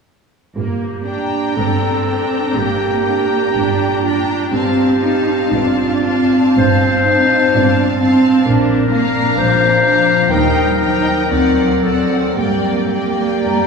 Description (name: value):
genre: classical, slow romantic movement for symphony orchestra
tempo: 61 BPM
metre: 4/4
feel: uneven beats, rubato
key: G minor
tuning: A4 = 440 Hz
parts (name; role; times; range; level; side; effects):
- clear clarinet; second line; 0.6-13.7 s; F4 to C5; -17 LUFS; left 1 dB; none
- rich symphonic cello section; bass; 0.6-13.7 s; F3 to Eb4; -19 LUFS; right 2 dB; none
- rich symphonic double bass section; bass; 0.6-13.7 s; G1 to G2; -21 LUFS; right 2 dB; none
- warm symphonic violin section; melody; 1.1-13.7 s; F#5 to Bb5; -25 LUFS; left 3 dB; none
- warm symphonic violin section; second line; 1.1-13.7 s; D5 to G5; -24 LUFS; left 3 dB; none
- warm symphonic viola section; accompaniment; 1.1-13.7 s; Bb3 to Eb4; -19 LUFS; equal; none
- mellow hollow concert flute; second line; 13.4-13.7 s; Bb5; -19 LUFS; left 3 dB; none
room: wet cathedral reverb, RT60 5.3 s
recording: recorded in a church or concert hall, studio ambience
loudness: -12 LUFS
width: side -5 dB against mid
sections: 0.6-13.7 A section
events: none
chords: 0.6 Gm; 4.5 F/G; 8.5 Bb; 10.3 Eb; 11.3 D7; 12.4 Gm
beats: | 0.56 1.56 2.55 3.54 | 4.52 5.51 6.57 7.53 | 8.46 9.38 10.31 11.32 | 12.38 13.44